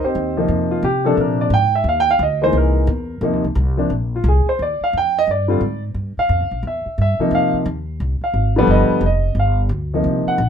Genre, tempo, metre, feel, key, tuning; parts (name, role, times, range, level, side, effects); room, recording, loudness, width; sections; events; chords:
jazz piano trio; 176 BPM; 4/4; swing 64% on 8ths; Eb major; A4 = 440 Hz
warm grand piano; melody; 0.0-10.5 s; C3 to G5; -17 LUFS; equal
upright bass; bass; 0.0-10.5 s; F1 to C3; -20 LUFS; equal
light reverb; minimal, uncompressed stereo recording; -16 LUFS; side -8 dB against mid
0.0-4.6 A section; 4.6-10.5 A section
grand piano solo 0.0-10.5
0.5 F5; 1.2 Bb7; 1.9 Eb5; 2.5 C7alt; 3.2 F5; 3.9 Bbsus2; 4.6 Ebmaj7; 6.0 Gm7b5; 6.6 C (rootless); 7.3 Fm7; 8.7 G7